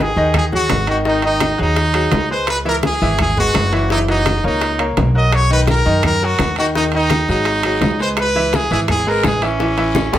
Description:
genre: latin, salsa.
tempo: 168 BPM.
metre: 4/4.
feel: straight.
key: G# minor.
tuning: A4 = 440 Hz.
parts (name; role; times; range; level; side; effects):
brilliant trumpet; melody; 0.0-10.2 s; C#4 to D#5; -18 LUFS; equal; none.
bright grand piano; accompaniment; 0.0-10.2 s; D#3 to E5; -20 LUFS; equal; none.
upright bass; bass; 0.0-10.2 s; F#1 to F#2; -20 LUFS; equal; none.
bongos; percussion; 0.2-10.2 s; none; -25 LUFS; left 4 dB; none.
congas; percussion; 0.2-10.2 s; none; -23 LUFS; left 1 dB; none.
claves; percussion; 0.3-10.1 s; none; -31 LUFS; left 4 dB; none.
timbales; percussion; 0.3-10.2 s; none; -24 LUFS; right 6 dB; none.
guiro; percussion; 5.3-10.2 s; none; -34 LUFS; left 5 dB; none.
room: light reverb.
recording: none.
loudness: -14 LUFS.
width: side -12 dB against mid.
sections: 0.0-10.2 A section.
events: drum fill 10.0.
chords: 0.0 G#7(no3); 1.1 G#5; 2.5 C#m7; 3.9 F#6; 5.3 Bmaj7; 6.8 D#madd11; 7.5 G#5; 8.2 C#m7; 9.6 A7.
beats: 0.35 0.70 | 1.06 1.42 1.77 2.13 | 2.48 2.84 3.19 3.55 | 3.90 4.26 4.62 4.97 | 5.33 5.68 6.04 6.40 | 6.75 7.11 7.47 7.82 | 8.18 8.54 8.89 9.25 | 9.61 9.96.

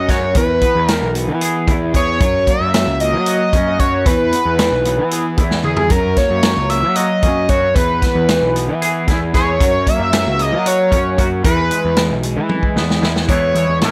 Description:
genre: psychedelic rock.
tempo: 227 BPM (eighths).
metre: 7/8.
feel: straight.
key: E lydian.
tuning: A4 = 440 Hz.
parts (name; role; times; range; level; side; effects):
overdriven synth lead; melody; 0.0-13.9 s; G#4 to E5; -19 LUFS; equal; distortion, slapback echo.
twangy electric guitar; riff; 0.0-13.9 s; E3 to G#4; -24 LUFS; equal; tremolo, double-tracked.
fuzz picked electric bass; bass; 0.0-13.9 s; B1 to F#3; -22 LUFS; equal; overdrive.
vintage drum kit; drums; 0.1-13.9 s; hi-hat, kick drum, snare drum, toms; -20 LUFS; equal; none.
room: light reverb, small room ambience.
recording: none.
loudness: -15 LUFS.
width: mono.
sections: 0.0-13.3 A section.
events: drum fill 5.5-5.9, 12.5-13.3.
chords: 0.4 E; 2.2 F#; 4.1 E; 5.9 F#; 7.8 E; 9.6 F#; 11.4 E.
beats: 0.09 | 0.36 0.62 0.89 1.15 1.42 1.68 1.95 | 2.21 2.48 2.74 3.00 3.27 3.53 3.80 | 4.06 4.33 4.59 4.86 5.12 5.38 5.65 | 5.91 6.18 6.44 6.70 6.97 7.23 7.50 | 7.76 8.02 8.29 8.55 8.81 9.08 9.34 | 9.60 9.87 10.13 10.39 10.66 10.92 11.18 | 11.45 11.71 11.97 12.24 12.50 12.76 13.03 | 13.29 13.55 13.82.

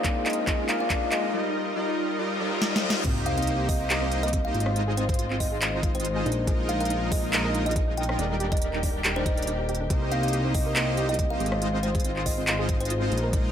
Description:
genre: future bass.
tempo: 140 BPM.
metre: 4/4.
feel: swing 54% on 16ths, half-time.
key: Eb major.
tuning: A4 = 440 Hz.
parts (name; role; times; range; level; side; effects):
bright tine electric piano; accompaniment; 0.0-1.3 s; Bb3 to Eb5; -34 LUFS; right 1 dB; sidechain pumping, tape echo.
dark studio string section; sustained chords; 0.0-13.5 s; C3 to Bb4; -37 LUFS; left 3 dB; sidechain pumping.
soft supersaw; riff; 0.0-13.5 s; G3 to Eb5; -30 LUFS; equal; sidechain pumping, low-pass filter.
fat analog bass; bass; 0.0-13.5 s; Eb1 to C2; -30 LUFS; equal; sidechain pumping, high-pass filter.
electronic kick drum; drums; 0.0-13.4 s; none; -27 LUFS; equal; overdrive.
trap drum kit; drums; 0.0-13.4 s; crash cymbal, handclaps, hi-hat, rim click, snare drum; -30 LUFS; equal; overdrive.
riser, reverse cymbal and sub drop; sound effects; 0.0-4.8 s; none; -34 LUFS; left 1 dB; none.
kalimba; melody; 0.3-13.1 s; C5 to G5; -31 LUFS; left 1 dB; sidechain pumping, dub echo.
soft round pluck; arpeggios; 3.0-13.4 s; C4 to Bb4; -37 LUFS; right 3 dB; chorus, sidechain pumping, tape echo.
room: light reverb.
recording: none.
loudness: -23 LUFS.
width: side -9 dB against mid.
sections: 0.0-3.0 A section; 3.0-13.5 B section.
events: build-up 0.0-3.0; drum fill 0.0-1.3, 2.6-3.0; riser 0.0-1.3; filter sweep on supersaw synth 0.0-3.0; filter sweep on kalimba 0.0-3.0; reverse cymbal 2.3-3.0; drop 3.0-13.5; impact 3.0-4.8.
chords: 0.0 Bb7sus4; 1.3 Eb; 3.0 Cm7; 4.5 Ab6; 6.3 Bb7sus4; 8.2 Ebmaj7; 9.9 Cm7; 11.4 Ab6.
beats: 0.04 0.47 0.90 | 1.33 1.76 2.19 2.62 | 3.04 3.47 3.90 4.33 | 4.76 5.19 5.62 6.04 | 6.47 6.90 7.33 7.76 | 8.19 8.62 9.04 9.47 | 9.90 10.33 10.76 11.19 | 11.62 12.04 12.47 12.90 | 13.33.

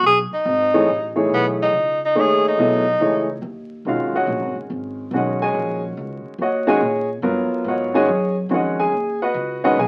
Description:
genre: jazz.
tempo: 142 BPM.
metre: 3/4.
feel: swing 66% on 8ths.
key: G# dorian from 3.9 s.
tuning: A4 = 438 Hz.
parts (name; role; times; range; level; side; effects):
bright tenor saxophone; melody; 0.0-3.4 s; B3 to G#4; -20 LUFS; equal; none.
upright bass; bass; 0.0-9.9 s; F#1 to A#2; -31 LUFS; equal; none.
warm concert grand piano; accompaniment; 0.7-9.9 s; D#3 to G#5; -21 LUFS; equal; none.
room: moderate studio reverb, RT60 0.7 s.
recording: very old 78 rpm record, vinyl crackle.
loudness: -20 LUFS.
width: mono.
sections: 0.0-3.9 A section; 3.9-9.9 B section.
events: none.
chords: 0.0 G#m; 3.9 G#m11; 8.9 B.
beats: | 0.03 0.45 0.88 | 1.30 1.73 2.15 | 2.58 3.00 3.43 | 3.85 4.28 4.70 | 5.13 5.55 5.97 | 6.40 6.82 7.24 | 7.67 8.09 8.51 | 8.93 9.36 9.78.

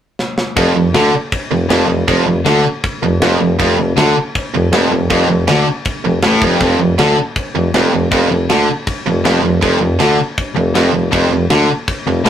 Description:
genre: punk rock.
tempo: 159 BPM.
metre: 4/4.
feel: straight.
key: F major.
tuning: A4 = 440 Hz.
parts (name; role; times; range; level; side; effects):
tight metal drum kit; drums; 0.2-12.3 s; crash cymbal, kick drum, snare drum; -19 LUFS; equal; none.
distorted electric guitar; riff; 0.6-12.3 s; F2 to D3; -17 LUFS; left 4 dB; overdrive.
tight distorted guitar; riff; 0.6-12.3 s; F2 to D3; -16 LUFS; right 6 dB; distortion.
warm tuba; bass; 0.6-12.3 s; F1 to D2; -16 LUFS; left 1 dB; none.
room: moderate studio ambience, RT60 0.5 s.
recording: rough rehearsal-room recording, tube saturation.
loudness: -12 LUFS.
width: side -9 dB against mid.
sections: 0.6-12.3 A section.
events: drum fill 0.2-0.6.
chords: none.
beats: 0.19 | 0.56 0.94 1.32 1.70 | 2.08 2.45 2.83 3.21 | 3.59 3.97 4.34 4.72 | 5.10 5.48 5.85 6.23 | 6.61 6.99 7.36 7.74 | 8.12 8.49 8.87 9.25 | 9.62 10.00 10.38 10.75 | 11.13 11.50 11.88 12.25.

